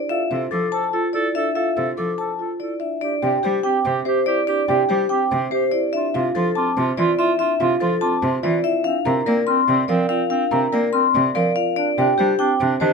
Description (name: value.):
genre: classical, minimalist pattern music.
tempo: 288 BPM (eighths).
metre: 7/8.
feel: straight.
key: C mixolydian.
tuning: A4 = 440 Hz.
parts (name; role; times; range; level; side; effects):
vibraphone with medium mallets; melody; 0.0-12.9 s; G4 to C6; -21 LUFS; left 5 dB; none.
marimba with soft mallets; arpeggios; 0.0-12.9 s; C4 to D5; -24 LUFS; right 5 dB; none.
clear clarinet; second line; 0.1-12.9 s; C4 to A4; -26 LUFS; right 5 dB; none.
celesta; arpeggios; 0.1-12.9 s; Eb5 to F6; -27 LUFS; equal; none.
clear cello; accompaniment; 0.3-12.9 s; C3 to Bb3; -25 LUFS; right 1 dB; none.
room: light reverb.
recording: close, detailed microphones.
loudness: -18 LUFS.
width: side -5 dB against mid.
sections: 0.0-3.0 A section; 3.0-12.9 B section.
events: none.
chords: 0.1 F6; 3.0 Cadd9; 5.9 Dm7; 8.9 Bbsus2; 11.8 Ebmaj7.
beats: | 0.10 0.31 0.52 0.73 0.93 1.14 1.35 | 1.56 1.77 1.98 2.18 2.39 2.60 2.81 | 3.02 3.23 3.43 3.64 3.85 4.06 4.27 | 4.48 4.68 4.89 5.10 5.31 5.52 5.73 | 5.93 6.14 6.35 6.56 6.77 6.98 7.18 | 7.39 7.60 7.81 8.02 8.23 8.43 8.64 | 8.85 9.06 9.27 9.48 9.68 9.89 10.10 | 10.31 10.52 10.73 10.93 11.14 11.35 11.56 | 11.77 11.98 12.18 12.39 12.60 12.81.